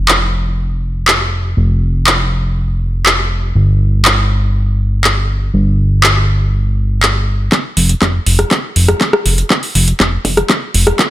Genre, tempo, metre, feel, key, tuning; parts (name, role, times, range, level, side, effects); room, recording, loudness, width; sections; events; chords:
progressive house; 121 BPM; 4/4; straight; A4 = 441 Hz
fat analog bass; bass; 0.0-10.9 s; F1 to G1; -13 LUFS; equal; sidechain pumping
deep house drum kit; drums; 0.1-11.1 s; handclaps, hi-hat, rim click; -13 LUFS; equal; overdrive
electronic kick drum; drums; 7.5-11.1 s; -15 LUFS; equal; high-pass filter on kick, high-pass filter on room
light reverb; -11 LUFS; side -14 dB against mid
0.0-7.5 A section; 7.5-11.1 B section
build-up 7.5-11.1; drum fill 7.5-11.1